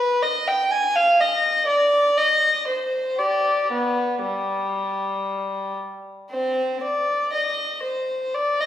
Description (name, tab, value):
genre	classical, baroque-style suite movement for unaccompanied violin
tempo	57-63 BPM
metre	3/4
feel	rubato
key	C minor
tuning	A4 = 437 Hz
part	dark violin	solo	0.0-8.7 s	G3 to Ab5	-20 LUFS	equal	none
room	wet recital hall reverb, RT60 1.4 s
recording	heard from further back in the room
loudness	-19 LUFS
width	side -11 dB against mid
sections	0.0-8.7 A section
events	none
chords	none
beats	| 0.23 1.19 2.17 | 3.19 4.24 5.27 | 6.31 7.33 8.35